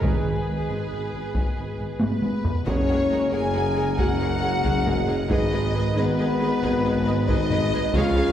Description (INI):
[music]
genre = cinematic, epic orchestral film score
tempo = 91 BPM (dotted quarters)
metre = 12/8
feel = straight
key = G# dorian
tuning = A4 = 440 Hz
[part]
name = rich studio violin section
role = melody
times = 0.0-8.3 s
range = G#4 to G#5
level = -32 LUFS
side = left 2 dB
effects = none
[part]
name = clear symphonic violin section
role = second line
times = 0.0-8.2 s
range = G#4 to F#5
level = -37 LUFS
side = left 2 dB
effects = none
[part]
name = clear symphonic viola section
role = accompaniment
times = 0.0-8.3 s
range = G#3 to B4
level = -34 LUFS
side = right 2 dB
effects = none
[part]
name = dark French horn section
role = sustained chords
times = 0.0-8.3 s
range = B3 to G#4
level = -28 LUFS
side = left 3 dB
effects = none
[part]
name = mellow trombone section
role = sustained chords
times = 0.0-8.3 s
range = C#3 to G#3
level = -32 LUFS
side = right 2 dB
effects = none
[part]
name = dark trumpet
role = stabs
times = 0.0-8.3 s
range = G#4 to C#5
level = -35 LUFS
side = right 1 dB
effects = none
[part]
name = clear chamber double bass section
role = bass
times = 0.0-8.3 s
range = F#1 to C#2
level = -31 LUFS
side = right 1 dB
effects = none
[part]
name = clear symphonic cello section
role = bass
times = 0.0-8.3 s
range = F#2 to C#3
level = -31 LUFS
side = right 1 dB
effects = none
[part]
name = mellow tuba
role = bass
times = 0.0-8.3 s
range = F#1 to C#2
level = -31 LUFS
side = equal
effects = none
[part]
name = taiko ensemble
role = drums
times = 0.0-8.3 s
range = none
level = -27 LUFS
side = equal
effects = none
[part]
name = timpani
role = percussion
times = 0.0-0.6 s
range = G#2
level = -29 LUFS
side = right 1 dB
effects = none
[part]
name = mellow small flute group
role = second line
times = 2.0-8.3 s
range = B4 to G#5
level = -30 LUFS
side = equal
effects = none
[part]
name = pipe organ, stopped flute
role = sustained chords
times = 2.7-8.3 s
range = G#3 to G#5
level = -33 LUFS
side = left 4 dB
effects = none
[sound]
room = wet scoring stage reverb, RT60 1.6 s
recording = heard from further back in the room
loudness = -21 LUFS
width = side -10 dB against mid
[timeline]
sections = 0.0-2.7 A section; 2.7-8.3 A section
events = drum fill 2.0-2.7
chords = 0.0 G#m; 2.7 F#add9; 5.3 G#m